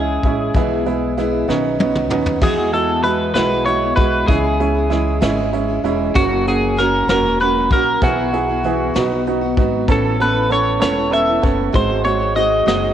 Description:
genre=six-eight pop ballad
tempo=64 BPM (dotted quarters)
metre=6/8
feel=straight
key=E major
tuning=A4 = 444 Hz
part: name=twelve-string electric guitar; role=melody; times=0.0-12.9 s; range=F#4 to E5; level=-19 LUFS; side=left 1 dB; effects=spring reverb, cassette tape
part: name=clear upright piano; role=accompaniment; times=0.0-12.9 s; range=G#3 to A4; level=-19 LUFS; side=right 6 dB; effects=cassette tape
part: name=picked steel-string acoustic guitar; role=arpeggios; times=0.0-12.9 s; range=F#2 to B#4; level=-25 LUFS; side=left 10 dB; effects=cassette tape
part: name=upright bass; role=bass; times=0.0-12.9 s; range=E1 to E2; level=-24 LUFS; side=left 1 dB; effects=none
part: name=vintage brush drum kit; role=drums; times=0.2-12.8 s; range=crash cymbal, hi-hat, kick drum, rim click, snare drum, toms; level=-20 LUFS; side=left 1 dB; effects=cassette tape
room=moderate lush hall reverb, RT60 2.7 s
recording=home recording on cassette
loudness=-14 LUFS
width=side -10 dB against mid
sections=0.0-2.4 A section; 2.4-12.9 B section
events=drum fill 1.5-2.4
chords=0.0 C#m; 0.5 E/B; 1.5 Badd9; 2.4 Eadd9; 4.3 C#m; 6.2 F#; 8.0 E/B; 8.9 B; 9.9 Aadd9; 11.7 G#7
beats=| 0.55 1.48 | 2.42 3.35 | 4.28 5.22 | 6.15 7.08 | 8.02 8.95 | 9.88 10.81 | 11.74 12.68

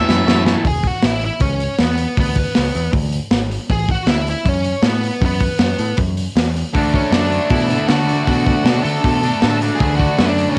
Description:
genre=garage rock duo or trio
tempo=157 BPM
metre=4/4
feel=straight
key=E mixolydian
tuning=A4 = 440 Hz
part: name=octave-fuzz lead guitar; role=melody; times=0.0-10.6 s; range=B3 to E5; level=-24 LUFS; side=equal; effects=distortion, cassette tape
part: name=combo organ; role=sustained chords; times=0.0-0.6, 6.8-10.6 s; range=E4 to E5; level=-30 LUFS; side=equal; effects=cassette tape
part: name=fuzz guitar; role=riff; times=0.0-0.6, 6.7-10.6 s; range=A2 to D4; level=-22 LUFS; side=equal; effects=distortion, cassette tape
part: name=overdriven picked electric bass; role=bass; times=0.0-10.4 s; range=E1 to D3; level=-23 LUFS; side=equal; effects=none
part: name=crunchy breakbeat drum kit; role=drums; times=0.1-10.5 s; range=hi-hat, kick drum, snare drum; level=-20 LUFS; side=equal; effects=cassette tape
room=light reverb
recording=home recording on cassette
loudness=-17 LUFS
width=mono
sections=0.7-10.6 A section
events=drum fill 0.0-0.7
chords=0.0 A; 0.7 E; 3.7 N.C.; 6.8 D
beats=0.28 | 0.66 1.03 1.41 1.79 | 2.17 2.56 2.94 3.32 | 3.70 4.08 4.46 4.84 | 5.23 5.61 5.99 6.37 | 6.75 7.13 7.52 7.90 | 8.28 8.66 9.04 9.43 | 9.81 10.19 10.57

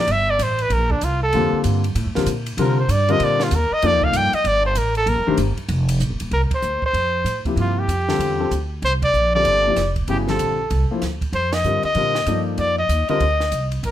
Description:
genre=modal jazz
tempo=192 BPM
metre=4/4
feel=swing 63% on 8ths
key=unclear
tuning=A4 = 441 Hz
part: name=breathy trumpet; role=melody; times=0.0-13.9 s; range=D4 to G5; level=-20 LUFS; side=equal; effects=plate reverb
part: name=upright bass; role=bass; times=0.0-13.9 s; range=Eb1 to C3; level=-22 LUFS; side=right 1 dB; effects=none
part: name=compact cocktail drum kit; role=drums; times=0.1-13.9 s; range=hi-hat, kick drum, ride cymbal, snare drum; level=-31 LUFS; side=right 2 dB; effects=none
part: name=warm baby grand piano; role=accompaniment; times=1.3-5.4, 7.5-13.2 s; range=C3 to D5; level=-22 LUFS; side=left 5 dB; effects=none
room=light reverb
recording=none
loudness=-17 LUFS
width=side -12 dB against mid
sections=0.0-6.3 A section; 6.3-13.9 B section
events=trumpet solo 0.0-6.3; band accent 6.5, 9.0, 11.5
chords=0.0 C7sus2; 1.3 F9sus4; 6.3 C9sus4; 11.3 F9sus4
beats=| 0.08 0.39 0.70 1.02 | 1.33 1.64 1.95 2.26 | 2.58 2.89 3.20 3.51 | 3.82 4.13 4.45 4.76 | 5.07 5.38 5.69 6.00 | 6.32 6.63 6.94 7.26 | 7.57 7.88 8.20 8.51 | 8.82 9.13 9.45 9.76 | 10.07 10.39 10.70 11.02 | 11.33 11.64 11.96 12.27 | 12.58 12.90 13.21 13.52 | 13.84

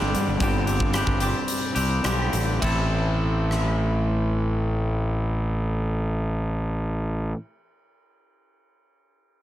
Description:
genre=quiet-loud alternative rock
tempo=102-116 BPM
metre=4/4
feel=straight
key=A minor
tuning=A4 = 440 Hz
part: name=twangy electric guitar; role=arpeggios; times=0.0-7.4 s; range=G2 to A4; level=-27 LUFS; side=left 1 dB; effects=none
part: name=fuzz fingered electric bass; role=bass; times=0.0-7.3 s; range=G1 to G2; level=-24 LUFS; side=equal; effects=overdrive
part: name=huge arena drum kit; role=drums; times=0.1-3.6 s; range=hi-hat, kick drum, ride cymbal, rim click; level=-29 LUFS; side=equal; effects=none
room=light reverb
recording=none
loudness=-22 LUFS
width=side -13 dB against mid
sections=0.0-2.6 A section; 2.6-7.3 B section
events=slowing down 0.0-2.6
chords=0.0 Gsus4; 2.6 Am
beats=| 0.40 0.93 1.48 2.04 | 2.62 3.21 3.80 4.39 | 4.98 5.57 6.16 6.75

